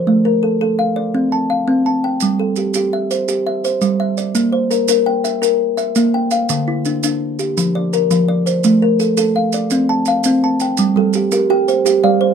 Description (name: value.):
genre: southern african traditional, mbira-style interlocking cycle.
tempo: 112 BPM (dotted quarters).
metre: 12/8.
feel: straight.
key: G dorian.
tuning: A4 = 440 Hz.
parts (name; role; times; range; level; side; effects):
kalimba; arpeggios; 0.0-12.3 s; D3 to A5; -14 LUFS; equal; none.
maracas; percussion; 2.2-12.0 s; none; -24 LUFS; right 10 dB; none.
kalimba; arpeggios; 11.0-12.3 s; G3 to D5; -16 LUFS; right 11 dB; none.
room: moderate small room reverb, RT60 0.5 s.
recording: minimal, uncompressed stereo recording.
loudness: -14 LUFS.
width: side -7 dB against mid.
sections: 0.0-10.8 A section; 10.8-12.3 B section.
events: none.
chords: 0.1 Am; 1.1 C5; 2.2 G5; 4.4 N.C.; 6.5 Dm; 7.6 F5; 8.6 Am; 9.7 C5; 10.8 Gm.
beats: | 0.07 0.60 1.14 1.68 | 2.21 2.75 3.29 3.82 | 4.36 4.89 5.43 5.97 | 6.50 7.04 7.58 8.11 | 8.65 9.18 9.72 10.25 | 10.79 11.32 11.85.